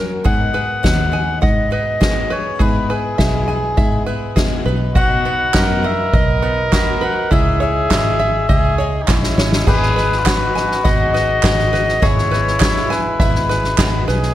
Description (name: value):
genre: indie folk with a building arrangement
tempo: 102 BPM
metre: 4/4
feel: straight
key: unclear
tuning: A4 = 444 Hz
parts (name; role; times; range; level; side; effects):
- picked twelve-string acoustic guitar; accompaniment; 0.0-14.3 s; G#2 to B4; -26 LUFS; left 6 dB; none
- open-back banjo; arpeggios; 0.0-14.3 s; B3 to G#5; -25 LUFS; right 5 dB; none
- melodica; melody; 0.3-14.0 s; G#4 to F#5; -20 LUFS; left 2 dB; none
- fingered electric bass; bass; 0.3-14.3 s; G#1 to G#2; -21 LUFS; equal; none
- soft-mallet drum kit; drums; 0.3-14.3 s; crash cymbal, kick drum, snare drum; -18 LUFS; equal; none
- warm trumpet; second line; 4.9-14.3 s; D#4 to A#4; -23 LUFS; right 3 dB; none
- group handclap; percussion; 5.5-13.9 s; none; -26 LUFS; right 7 dB; none
room: light reverb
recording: none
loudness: -14 LUFS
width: side -13 dB against mid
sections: 0.2-9.7 A section; 9.7-14.3 B section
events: drum fill 9.1-9.7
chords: 0.2 G#m7; 2.6 E; 4.7 B; 7.3 C#madd9; 9.7 G#m7; 12.0 E/G#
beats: | 0.25 0.84 1.43 2.02 | 2.60 3.19 3.78 4.37 | 4.96 5.55 6.13 6.72 | 7.31 7.90 8.49 9.08 | 9.67 10.26 10.84 11.43 | 12.02 12.61 13.20 13.78